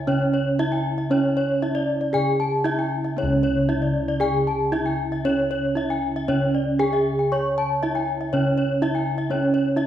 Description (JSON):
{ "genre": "Balinese gamelan", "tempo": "116 BPM", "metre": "4/4", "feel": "straight", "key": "C# pelog", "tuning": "A4 = 440 Hz", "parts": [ { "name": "gamelan-type bronze metallophone", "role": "melody", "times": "0.0-9.9 s", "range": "C#4 to C#5", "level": "-24 LUFS", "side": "right 2 dB", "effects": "none" }, { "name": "gamelan-type bronze metallophone", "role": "arpeggios", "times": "0.0-9.9 s", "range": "C#5 to C#6", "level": "-25 LUFS", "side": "left 2 dB", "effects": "none" }, { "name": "gamelan-type bossed gongs", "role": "bass", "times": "0.0-9.9 s", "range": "C#2 to C#5", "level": "-25 LUFS", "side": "equal", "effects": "none" } ], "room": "wet recital hall reverb, RT60 1.4 s", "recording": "recorded in a church or concert hall", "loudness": "-20 LUFS", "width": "side -11 dB against mid", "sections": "0.0-9.9 A section", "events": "none", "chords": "none" }